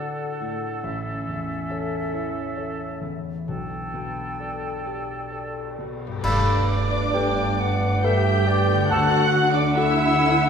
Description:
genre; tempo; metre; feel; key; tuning
cinematic, emotional film score for orchestra; 67 BPM; 3/4; uneven beats, rubato; unclear; A4 = 441 Hz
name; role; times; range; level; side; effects
clear oboe; second line; 0.0-9.2 s; A4; -33 LUFS; right 1 dB; none
mellow silver concert flute; second line; 0.0-9.3 s; E5 to B5; -31 LUFS; equal; none
warm clarinet; second line; 0.0-10.5 s; C#4 to G5; -29 LUFS; equal; none
warm concert grand piano; accompaniment; 0.0-10.5 s; A1 to D5; -30 LUFS; left 2 dB; none
concert harp; arpeggios; 0.0-10.5 s; G2 to D5; -31 LUFS; left 4 dB; none
cymbal swell, clash cymbals and concert bass drum; percussion; 3.5-8.0 s; none; -32 LUFS; right 1 dB; none
muted symphonic violin section; melody; 6.2-10.5 s; D6 to G6; -27 LUFS; right 1 dB; none
muted symphonic violin section; second line; 6.2-10.5 s; D5 to G5; -29 LUFS; left 1 dB; none
muted symphonic viola section; accompaniment; 6.2-10.5 s; D4 to G4; -27 LUFS; right 2 dB; none
mellow French horn section; sustained chords; 6.2-10.5 s; A3 to B4; -29 LUFS; left 5 dB; none
muted symphonic cello section; bass; 6.2-10.5 s; G2 to D3; -27 LUFS; right 2 dB; none
muted symphonic double bass section; bass; 6.2-10.5 s; G1 to D2; -27 LUFS; right 3 dB; none
room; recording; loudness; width
wet scoring stage reverb, RT60 1.5 s; minimal, uncompressed stereo recording; -21 LUFS; side -7 dB against mid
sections
0.0-6.2 A section; 6.2-10.5 B section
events
band accent 6.2-7.1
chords
0.0 D; 0.8 A; 3.5 Gadd9/B; 6.2 Gadd9; 8.9 D

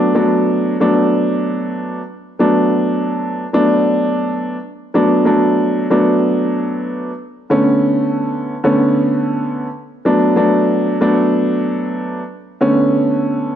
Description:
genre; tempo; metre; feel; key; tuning
hip hop; 94 BPM; 4/4; swing 57% on 16ths; B minor; A4 = 440 Hz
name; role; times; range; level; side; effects
dark upright piano; solo; 0.0-13.6 s; D3 to D4; -13 LUFS; equal; cassette tape, high-pass filter, low-pass filter, slapback echo
room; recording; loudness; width
moderate echo chamber reverb, RT60 1.7 s, small room ambience; none; -13 LUFS; side -10 dB against mid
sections
0.0-4.9 A section; 4.9-13.6 B section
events
none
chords
0.0 Bm7; 7.5 Bm9; 10.1 D6; 12.6 Bm9

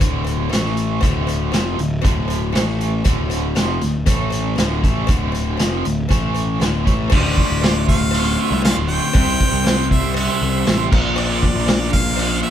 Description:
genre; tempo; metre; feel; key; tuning
classic rock; 118 BPM; 4/4; straight; D minor; A4 = 441 Hz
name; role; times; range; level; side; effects
biting overdriven guitar; riff; 0.0-12.5 s; D2 to C5; -25 LUFS; right 7 dB; tremolo
overdriven electric guitar; riff; 0.0-12.5 s; D2 to C4; -23 LUFS; left 5 dB; none
fuzz picked electric bass; bass; 0.0-12.4 s; D1 to C2; -22 LUFS; equal; overdrive
vintage drum kit; drums; 0.0-12.3 s; crash cymbal, hi-hat, kick drum, snare drum; -19 LUFS; equal; none
cowbell; percussion; 0.2-12.3 s; none; -32 LUFS; left 7 dB; none
bright harmonica; melody; 7.1-12.5 s; D5 to G5; -24 LUFS; equal; none
room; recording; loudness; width
moderate studio reverb, RT60 0.5 s; band playing live in one room; -16 LUFS; side -10 dB against mid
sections
0.0-7.1 A section; 7.1-12.5 B section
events
none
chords
0.0 D5; 0.5 A5; 1.0 Dm; 2.5 A5; 3.1 Dm; 4.1 A5; 4.6 Dm; 6.1 A5; 6.6 D5; 7.1 Dm; 9.1 C; 10.9 Bb

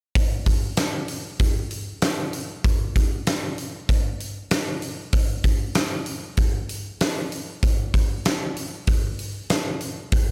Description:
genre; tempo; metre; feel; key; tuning
rock; 96 BPM; 4/4; straight; none; none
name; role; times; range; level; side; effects
huge arena drum kit; drums; 0.2-10.3 s; hi-hat, kick drum, snare drum; -24 LUFS; equal; none
room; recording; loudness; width
little or no reverb; none; -25 LUFS; mono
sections
0.2-10.3 A section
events
none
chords
none

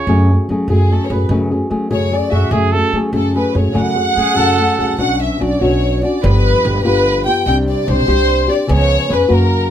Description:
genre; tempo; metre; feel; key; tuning
mexican folk, mariachi; 97 BPM (dotted quarters); 6/8; straight; F# minor, B harmonic minor from 5.0 s; A4 = 440 Hz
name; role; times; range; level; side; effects
clear trumpet; second line; 0.0-5.0 s; F#4 to C#5; -19 LUFS; right 6 dB; none
flamenco guitar; accompaniment; 0.0-9.7 s; F#2 to G#4; -17 LUFS; left 2 dB; none
upright bass; bass; 0.1-9.7 s; G1 to F#3; -17 LUFS; right 1 dB; none
dark studio violin section; melody; 0.7-9.7 s; G#4 to G5; -17 LUFS; equal; none
room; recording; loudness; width
moderate studio reverb, RT60 0.6 s; none; -12 LUFS; side -10 dB against mid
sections
0.0-5.0 A section; 5.0-9.7 B section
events
none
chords
0.1 F#madd9; 5.0 Bmadd9; 6.2 G7; 7.5 Csus2; 8.7 C#7

